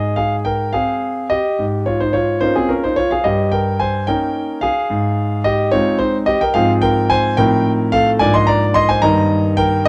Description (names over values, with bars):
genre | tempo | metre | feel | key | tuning
classical-period piano sonatina | 72 BPM (dotted quarters) | 6/8 | rubato | Ab major, Eb major from 6.5 s | A4 = 440 Hz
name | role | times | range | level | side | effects
warm concert grand piano | solo | 0.0-9.9 s | G2 to C6 | -16 LUFS | equal | none
room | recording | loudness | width
moderate recital hall reverb, RT60 1.3 s | close, detailed microphones | -16 LUFS | mono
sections
0.0-9.9 A section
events
none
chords
0.0 Ab; 1.6 Bbm7/Ab; 3.2 Eb7/G; 4.9 Ab; 6.5 Fm/Ab; 7.4 F7/A; 8.2 Bb7/Ab; 9.0 Eb/G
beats
0.74 | 1.59 2.42 | 3.25 4.08 | 4.90 5.72 | 6.55 7.38 | 8.21 9.03 | 9.87